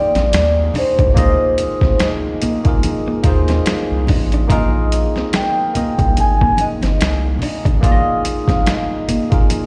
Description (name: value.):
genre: R&B, neo-soul.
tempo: 72 BPM.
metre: 4/4.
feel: swing 57% on 16ths.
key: unclear.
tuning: A4 = 441 Hz.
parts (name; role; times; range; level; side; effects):
vibraphone with soft mallets; melody; 0.0-9.7 s; C5 to Ab5; -22 LUFS; equal; slapback echo.
barky tine electric piano; accompaniment; 0.0-9.7 s; Bb3 to Eb5; -25 LUFS; equal; overdrive, phaser, slapback echo.
hand-pumped harmonium; sustained chords; 0.0-9.7 s; Eb3 to Bb3; -34 LUFS; equal; none.
clean electric guitar; second line; 0.2-9.3 s; Bb3 to D4; -29 LUFS; equal; spring reverb.
round analog bass; bass; 0.2-9.5 s; G1 to Eb2; -20 LUFS; equal; none.
dusty soul sampler-style drum kit; drums; 0.2-9.7 s; hi-hat, kick drum, snare drum; -20 LUFS; equal; overdrive.
congas; percussion; 0.2-9.7 s; none; -29 LUFS; equal; none.
room: little or no reverb.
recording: live gig heard through the venue's PA, recital hall reverb.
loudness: -16 LUFS.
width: mono.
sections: 0.0-9.7 A section.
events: none.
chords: 0.0 Bb9sus4.